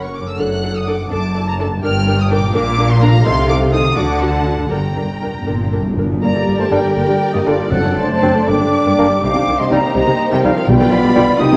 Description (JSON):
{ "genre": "classical, dramatic, fast romantic movement for symphony orchestra", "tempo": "76-86 BPM (dotted quarters)", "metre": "6/8", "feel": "rubato", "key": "G minor", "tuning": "A4 = 440 Hz", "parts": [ { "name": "warm symphonic violin section", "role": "melody", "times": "0.0-11.6 s", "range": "D5 to F#6", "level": "-26 LUFS", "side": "equal", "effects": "none" }, { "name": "warm symphonic viola section", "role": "accompaniment", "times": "0.0-11.6 s", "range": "C3 to A#4", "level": "-23 LUFS", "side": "equal", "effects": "none" }, { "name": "concert harp", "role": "arpeggios", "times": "0.0-11.6 s", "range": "F#2 to C#5", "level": "-27 LUFS", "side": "equal", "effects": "none" }, { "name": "rich symphonic cello section", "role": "bass", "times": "0.0-11.6 s", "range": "F#2 to D3", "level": "-24 LUFS", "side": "equal", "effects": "none" }, { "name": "rich symphonic double bass section", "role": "bass", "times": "0.0-11.5 s", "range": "F#1 to D2", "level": "-23 LUFS", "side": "equal", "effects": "none" }, { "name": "rich studio violin section", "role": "second line", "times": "0.4-11.6 s", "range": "G4 to Bb5", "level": "-28 LUFS", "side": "equal", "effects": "none" }, { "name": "timpani", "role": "percussion", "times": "4.7-8.4, 10.7-11.4 s", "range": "F#2 to B2", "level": "-22 LUFS", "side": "equal", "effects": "none" }, { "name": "flute section", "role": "second line", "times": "6.2-11.6 s", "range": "F4 to G5", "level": "-26 LUFS", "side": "equal", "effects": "none" }, { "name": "mellow oboe", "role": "second line", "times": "6.2-11.6 s", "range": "D5 to Eb6", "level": "-25 LUFS", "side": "equal", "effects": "none" }, { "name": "dark French horn section", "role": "sustained chords", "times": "6.2-11.6 s", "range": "D3 to Eb4", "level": "-22 LUFS", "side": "equal", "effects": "none" }, { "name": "mellow clarinet", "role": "second line", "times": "6.7-11.2 s", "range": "D4 to F4", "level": "-28 LUFS", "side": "equal", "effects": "none" }, { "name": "clear bassoon", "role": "accompaniment", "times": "6.7-11.2 s", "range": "G3 to C4", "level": "-24 LUFS", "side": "equal", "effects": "none" } ], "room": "wet scoring stage reverb, RT60 1.7 s", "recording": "worn, warbling old tape, cassette tape, warbly pitch drift", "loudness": "-15 LUFS", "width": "mono", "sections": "0.0-6.2 A section; 6.2-11.6 B section", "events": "timpani fill 4.7-6.2", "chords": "0.4 D/F#; 1.8 Gm; 2.5 Bb; 3.2 Adim/C; 4.0 D; 4.7 Gm; 7.7 D7/F#; 8.5 Gm; 9.2 Cm7; 10.7 G7/B" }